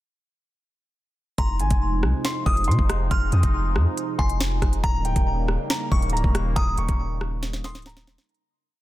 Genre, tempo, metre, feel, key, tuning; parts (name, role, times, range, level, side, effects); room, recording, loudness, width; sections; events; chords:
hip hop, drill; 139 BPM; 4/4; half-time; F minor; A4 = 440 Hz
dark baby grand piano; melody; 1.4-8.3 s; G5 to F6; -30 LUFS; equal; low-pass filter, digital delay
delicate synth tine bell; second line; 1.4-7.8 s; Ab5 to Eb6; -34 LUFS; left 3 dB; chorus, digital delay
sweeping resonant pad; sustained chords; 1.4-8.3 s; C3 to Eb4; -31 LUFS; right 2 dB; lush chorus
long sustained 808-style bass; bass; 1.4-8.2 s; Db1 to C3; -24 LUFS; equal
drill drum kit; drums; 1.4-8.4 s; finger snaps, hi-hat, kick drum, rim click, snare drum; -24 LUFS; equal
little or no reverb; dense, heavily limited modern master; -20 LUFS; side -16 dB against mid
1.4-8.3 hook
fade-out 6.6-8.3; drum fill 7.4-8.3
1.4 Fm7; 4.8 Eb7